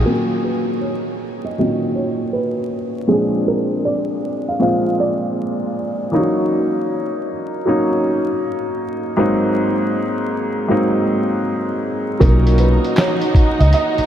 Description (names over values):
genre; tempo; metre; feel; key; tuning
lo-fi hip hop; 79 BPM; 4/4; swing 64% on 16ths; B major; A4 = 440 Hz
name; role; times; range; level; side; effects
clear upright piano; accompaniment; 0.0-14.1 s; G#2 to E#4; -18 LUFS; equal; low-pass filter
vintage muted fingered electric bass; bass; 0.0, 12.2-14.0 s; B1 to C#2; -13 LUFS; equal; none
felt-muted upright piano; melody; 0.1-6.1, 12.2-14.1 s; G#4 to E#5; -23 LUFS; right 3 dB; low-pass filter
warm studio string section; sustained chords; 12.2-14.1 s; D#4 to A#5; -22 LUFS; right 1 dB; low-pass filter
lo-fi sampler-style drum kit; drums; 12.2-14.1 s; handclaps, hi-hat, kick drum, snare drum; -19 LUFS; equal; none
room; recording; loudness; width
wet huge ambient reverb, RT60 7.3 s; dreamy mix soaked in reverb, vinyl crackle; -16 LUFS; side -10 dB against mid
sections
0.1-12.2 A section; 12.2-14.1 B section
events
filter sweep 0.1-12.2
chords
0.1 Bmaj9/A#; 3.1 A#7; 6.1 D#m7; 9.2 G#7; 12.2 Bmaj7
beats
| 0.05 0.81 1.57 2.33 | 3.09 3.85 4.61 5.37 | 6.13 6.89 7.65 8.41 | 9.17 9.93 10.69 11.45 | 12.21 12.96 13.72